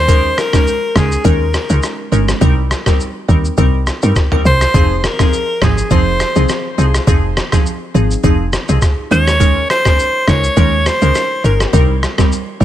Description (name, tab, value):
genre	afrobeats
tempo	103 BPM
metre	4/4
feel	swing 55% on 16ths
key	F minor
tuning	A4 = 440 Hz
part	breathy alto saxophone	melody	0.0-11.7 s	Ab4 to Db5	-17 LUFS	equal	ping-pong delay
part	glassy wavetable pluck	accompaniment	0.0-12.6 s	F3 to Bb4	-19 LUFS	right 1 dB	chorus
part	woody log drum bass	bass	0.0-12.6 s	F1 to G2	-14 LUFS	equal	none
part	trip hop sampler-style drum kit	drums	0.1-12.6 s	kick drum, rim click, shaker, toms	-15 LUFS	equal	vintage 12-bit sampler grit
room	little or no reverb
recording	none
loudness	-11 LUFS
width	side -12 dB against mid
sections	0.0-12.6 A section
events	none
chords	0.0 Eb7sus4; 2.4 Cm7; 4.7 Fm7; 9.1 Eb7sus4; 11.7 Cm7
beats	| 0.08 0.67 1.25 1.83 | 2.41 3.00 3.58 4.16 | 4.74 5.33 5.91 6.49 | 7.07 7.66 8.24 8.82 | 9.40 9.99 10.57 11.15 | 11.73 12.32